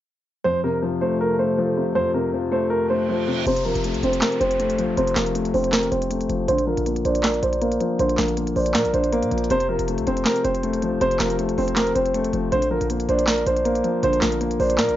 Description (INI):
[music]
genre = hip hop, trap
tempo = 159 BPM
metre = 4/4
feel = half-time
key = F major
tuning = A4 = 440 Hz
[part]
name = dark concert grand piano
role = melody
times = 0.4-14.9 s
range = Bb4 to C5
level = -23 LUFS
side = right 2 dB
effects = low-pass filter
[part]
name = dark concert grand piano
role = accompaniment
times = 0.4-15.0 s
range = F2 to D4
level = -23 LUFS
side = left 2 dB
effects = low-pass filter
[part]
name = sweeping resonant pad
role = sustained chords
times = 0.4-3.4 s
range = C3 to A4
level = -32 LUFS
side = right 3 dB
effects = none
[part]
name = reverse cymbal and downlifter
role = sound effects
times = 2.9-6.5, 14.8-15.0 s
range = none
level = -35 LUFS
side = right 3 dB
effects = none
[part]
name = short 808-style bass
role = bass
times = 3.5-15.0 s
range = F1 to Bb2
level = -29 LUFS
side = right 1 dB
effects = none
[part]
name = trap drum kit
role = drums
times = 3.5-15.0 s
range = handclaps, hi-hat, snare drum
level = -25 LUFS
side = equal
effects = none
[sound]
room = little or no reverb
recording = dry, gritty hardware recording, nothing above 7.5 kHz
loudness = -19 LUFS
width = side -12 dB against mid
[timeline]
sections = 0.4-3.5 A section; 3.5-15.0 B section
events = reverse cymbal 2.9-3.5; filter sweep 3.5-9.5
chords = 0.4 F; 6.5 Bb; 9.5 F; 12.5 Bb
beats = | 0.45 0.82 1.20 1.58 | 1.96 2.33 2.71 3.09 | 3.46 3.84 4.22 4.60 | 4.97 5.35 5.73 6.11 | 6.48 6.86 7.24 7.62 | 7.99 8.37 8.75 9.13 | 9.50 9.88 10.26 10.63 | 11.01 11.39 11.77 12.14 | 12.52 12.90 13.28 13.65 | 14.03 14.41 14.79